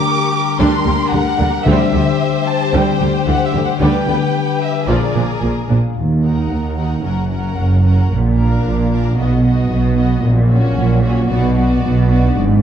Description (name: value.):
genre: cinematic.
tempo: 112 BPM.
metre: 4/4.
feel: straight.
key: unclear.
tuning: A4 = 441 Hz.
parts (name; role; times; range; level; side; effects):
dark symphonic violin section; melody; 0.0-12.4 s; C#5 to D6; -23 LUFS; equal; none.
warm studio violin section; second line; 0.0-12.4 s; F#4 to C5; -23 LUFS; left 4 dB; none.
concert harp; arpeggios; 0.0-12.6 s; F#2 to D5; -21 LUFS; left 11 dB; none.
timpani; percussion; 0.0-2.4 s; D3; -24 LUFS; left 1 dB; none.
warm symphonic viola section; accompaniment; 0.6-12.4 s; E3 to F4; -23 LUFS; right 2 dB; none.
rich symphonic double bass section; bass; 0.6-12.6 s; F#1 to D#2; -18 LUFS; right 2 dB; none.
warm symphonic cello section; bass; 0.6-12.6 s; D#2 to D3; -17 LUFS; right 2 dB; none.
room: moderate scoring stage reverb, RT60 1.5 s.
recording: dark, warm production.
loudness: -13 LUFS.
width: side -9 dB against mid.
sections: 0.0-6.0 A section; 6.0-12.6 B section.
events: none.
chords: 0.0 Gm/D; 1.7 C/D; 3.8 G/D; 4.9 Bb7; 6.0 D#m; 7.1 F#; 8.1 A#; 9.2 B; 10.2 F#/A#; 11.3 Bm.